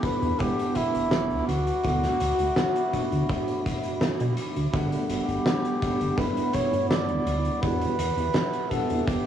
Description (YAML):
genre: vaporwave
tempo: 83 BPM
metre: 4/4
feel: straight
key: G major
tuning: A4 = 441 Hz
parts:
  - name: warm flugelhorn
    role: melody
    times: 0.0-9.3 s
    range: E4 to D5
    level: -28 LUFS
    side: equal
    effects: vintage 12-bit sampler grit, tape echo
  - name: bell-like tine electric piano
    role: accompaniment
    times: 0.0-9.3 s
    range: E3 to F#5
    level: -30 LUFS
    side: right 1 dB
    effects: medium stereo tremolo, lush chorus, vintage 12-bit sampler grit
  - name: warbly tape-like pad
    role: sustained chords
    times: 0.0-9.3 s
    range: G3 to D6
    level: -35 LUFS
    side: right 1 dB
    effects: chorus, built-in reverb
  - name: kick drum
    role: drums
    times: 0.0-9.2 s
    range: none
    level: -33 LUFS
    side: equal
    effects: none
  - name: oversized low-tuned drum kit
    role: drums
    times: 0.0-9.2 s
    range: hi-hat, snare drum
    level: -31 LUFS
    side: equal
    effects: none
  - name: chorused synth bass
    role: bass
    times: 0.2-9.2 s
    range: E1 to B2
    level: -28 LUFS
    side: equal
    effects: none
room: moderate lush hall reverb, RT60 2.0 s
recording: worn, warbling old tape, cassette tape, warbly pitch drift, small room ambience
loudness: -23 LUFS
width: side -9 dB against mid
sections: 0.0-4.7 A section; 4.7-9.3 B section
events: none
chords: 0.0 A9sus4/E; 1.5 D69; 4.7 Gmaj7; 7.6 Em9